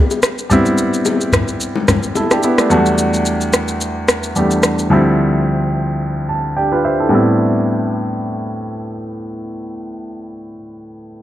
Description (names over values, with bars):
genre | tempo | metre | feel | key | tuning
amapiano | 109 BPM | 4/4 | swing 55% on 16ths | A minor | A4 = 442 Hz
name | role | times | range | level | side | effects
clear baby grand piano | accompaniment | 0.0-11.2 s | D2 to A5 | -16 LUFS | equal | low-pass filter
rich double bass | bass | 0.0-0.5 s | A1 | -50 LUFS | equal | none
electronic shaker and rim click | drums | 0.1-4.9 s | none | -16 LUFS | equal | none
bongos and congas | percussion | 0.1-2.4 s | none | -18 LUFS | left 3 dB | none
room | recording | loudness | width
light reverb, studio reverb | dark, warm production | -13 LUFS | side -13 dB against mid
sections
0.0-7.1 A section; 7.1-9.3 B section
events
filter sweep on grand piano 0.0-7.1; grand piano fill 6.0-7.1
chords
0.0 Am11; 2.7 Em11; 4.9 Dm11; 7.1 Am11